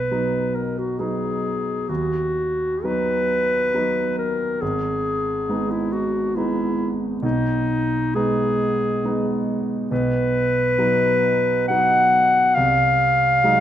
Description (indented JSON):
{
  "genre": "classical, romantic duo for clarinet and grand piano",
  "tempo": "68 BPM",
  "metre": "3/4",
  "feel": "rubato",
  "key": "unclear",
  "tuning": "A4 = 442 Hz",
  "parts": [
    { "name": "warm clarinet", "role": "melody", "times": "0.0-13.6 s", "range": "D#4 to F#5", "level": "-20 LUFS", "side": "left 1 dB", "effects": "none" },
    { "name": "warm concert grand piano", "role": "accompaniment", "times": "0.0-13.6 s", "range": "G#1 to D#4", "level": "-23 LUFS", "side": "right 1 dB", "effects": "none" }
  ],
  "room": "moderate recital hall reverb, RT60 1.4 s",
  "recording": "none",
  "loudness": "-18 LUFS",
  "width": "side -11 dB against mid",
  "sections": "0.0-13.6 A section",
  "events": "none",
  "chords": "0.0 B; 1.9 B/D#; 4.6 G#m; 7.2 G#m/B; 9.9 B; 12.6 G#7/B#"
}